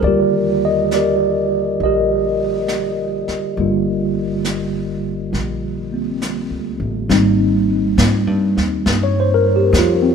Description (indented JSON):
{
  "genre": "jazz ballad",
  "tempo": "68 BPM",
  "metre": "4/4",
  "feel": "swing 67% on 8ths",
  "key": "Eb major, Ab major from 7.1 s",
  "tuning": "A4 = 439 Hz",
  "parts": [
    { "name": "tine electric piano", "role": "accompaniment", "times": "0.0-10.1 s", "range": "D3 to Eb5", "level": "-16 LUFS", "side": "equal", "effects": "medium stereo tremolo" },
    { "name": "upright bass", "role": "bass", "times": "0.0-10.1 s", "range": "G1 to Ab2", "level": "-22 LUFS", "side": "left 1 dB", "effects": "none" },
    { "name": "jazz brush drum kit", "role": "drums", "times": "0.0-10.1 s", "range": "brushed snare drum, hi-hat, snare drum", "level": "-22 LUFS", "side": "right 1 dB", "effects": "none" }
  ],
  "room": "light reverb",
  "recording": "band playing live in one room",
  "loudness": "-15 LUFS",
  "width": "side -6 dB against mid",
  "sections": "0.0-7.1 A section; 7.1-10.1 B section",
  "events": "none",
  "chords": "0.0 Ebmaj7; 7.1 Abmaj7",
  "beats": "| 0.03 0.91 1.80 2.68 | 3.56 4.45 5.33 6.21 | 7.10 7.98 8.86 9.74"
}